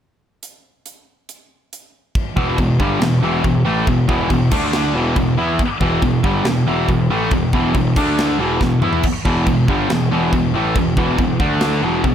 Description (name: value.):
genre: heavy metal.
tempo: 140 BPM.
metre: 4/4.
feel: straight.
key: E minor.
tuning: A4 = 441 Hz.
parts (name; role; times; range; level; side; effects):
tight metal drum kit; drums; 0.4-12.1 s; china cymbal, crash cymbal, hi-hat, kick drum, snare drum, toms; -21 LUFS; equal; none.
high-gain distorted guitar; riff; 2.4-12.1 s; E2 to E4; -16 LUFS; equal; distortion.
fuzz picked electric bass; bass; 2.4-12.1 s; E1 to E2; -22 LUFS; equal; overdrive.
room: small room ambience.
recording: none.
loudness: -14 LUFS.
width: side -9 dB against mid.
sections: 0.4-2.1 A section; 2.1-12.1 B section.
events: drum fill 8.6-9.0.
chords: 0.4 N.C.; 2.1 Em; 4.5 D5; 5.0 Em; 8.0 D5; 8.4 Em; 11.4 D5.